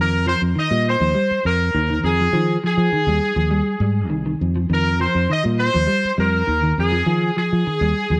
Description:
afrobeat; 102 BPM; 4/4; straight; F minor; A4 = 441 Hz
bright horn section; melody; 0.0-8.2 s; Ab4 to Eb5; -23 LUFS; equal
semi-hollow electric guitar; arpeggios; 0.0-8.2 s; Eb3 to G3; -26 LUFS; equal; lush chorus
fingered electric bass; bass; 0.0-8.2 s; C2 to F3; -22 LUFS; equal
light reverb, studio reverb; -19 LUFS; mono
0.0-8.2 A section
0.0 Fm9

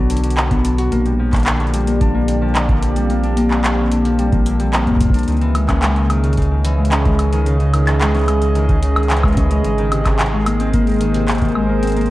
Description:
IDM; 110 BPM; 4/4; straight; A4 = 445 Hz
warbly tape-like pad; sustained chords; 0.0-12.1 s; Bb2 to F#5; -22 LUFS; right 2 dB; chorus, built-in reverb, vintage 12-bit sampler grit
Celtic harp; arpeggios; 0.0-12.1 s; C3 to F#4; -20 LUFS; left 3 dB; low-pass filter, digital delay
warm sub bass; bass; 0.0-12.1 s; Ab1 to Db2; -18 LUFS; equal; tube saturation
booming analog drum machine; drums; 0.1-12.1 s; handclaps, hi-hat, woodblock; -22 LUFS; equal
electronic kick drum; drums; 0.5-11.5 s; -18 LUFS; equal
moderate lush hall reverb, RT60 1.7 s, digital ambience; worn, warbling old tape, cassette tape, warbly pitch drift; -14 LUFS; side -16 dB against mid
0.0-12.1 A section
0.0 Bm; 0.9 Bb6; 5.3 Dbmadd9; 9.6 Abadd9

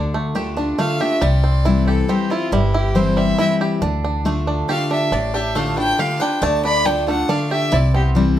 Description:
bluegrass; 138 BPM; 3/4; straight; D minor; A4 = 441 Hz
bluegrass banjo; melody; 0.0-8.4 s; G3 to G4; -24 LUFS; right 4 dB
picked steel-string acoustic guitar; accompaniment; 0.0-8.4 s; G2 to F4; -20 LUFS; left 3 dB
upright bass; bass; 0.0-8.4 s; G1 to D2; -20 LUFS; equal
clear fiddle; melody; 0.8-8.1 s; E4 to B5; -22 LUFS; equal
lap resonator guitar; second line; 4.7-8.4 s; B3 to D5; -25 LUFS; equal
moderate studio reverb, RT60 0.5 s; -16 LUFS; side -11 dB against mid
0.0-8.4 A section
0.0 Dm; 1.2 C; 3.8 Dm; 7.7 C

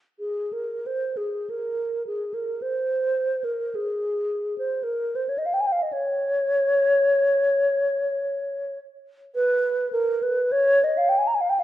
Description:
classical, free, expressive piece for unaccompanied alto flute; 40-56 BPM; 4/4; rubato; A4 = 439 Hz
mellow hollow wooden-headed alto flute; solo; 0.2-11.6 s; Ab4 to Bb5; -21 LUFS; equal
wet recital hall reverb, RT60 1.7 s; dark, warm production; -22 LUFS; side -13 dB against mid
0.2-11.6 A section

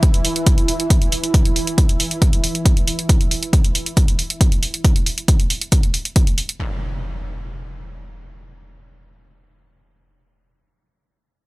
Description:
driving peak-time techno; 137 BPM; 4/4; straight; A4 = 440 Hz
swarming drone; drone; 0.0-3.1 s; E3 to E4; -26 LUFS; right 2 dB; built-in reverb, sidechain pumping
electronic hi-hat; drums; 0.0-6.6 s; -22 LUFS; right 1 dB
electronic kick drum; drums; 0.0-6.2 s; -15 LUFS; equal
impact; sound effects; 6.6-10.5 s; -30 LUFS; equal
little or no reverb; dry, gritty hardware recording; -15 LUFS; side -21 dB against mid
0.0-6.6 A section; 6.6-10.1 B section

